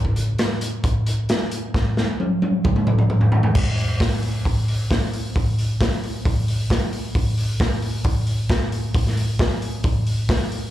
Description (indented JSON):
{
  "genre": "rock",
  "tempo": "134 BPM",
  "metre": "4/4",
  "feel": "straight",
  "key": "none",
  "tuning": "none",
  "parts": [
    { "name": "raw garage drum kit", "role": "drums", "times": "0.0-10.6 s", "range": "crash cymbal, hi-hat, kick drum, snare drum, toms", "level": "-19 LUFS", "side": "equal", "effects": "none" }
  ],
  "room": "light reverb",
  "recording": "live gig heard through the venue's PA, club reverb",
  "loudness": "-19 LUFS",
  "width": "side -13 dB against mid",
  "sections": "0.0-3.6 A section; 3.6-10.7 B section",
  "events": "drum fill 1.8-3.6",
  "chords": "none",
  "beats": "0.39 0.85 1.30 | 1.75 2.20 2.65 3.10 | 3.55 4.00 4.46 4.91 | 5.35 5.80 6.25 6.70 | 7.15 7.60 8.05 8.50 | 8.95 9.40 9.85 10.29"
}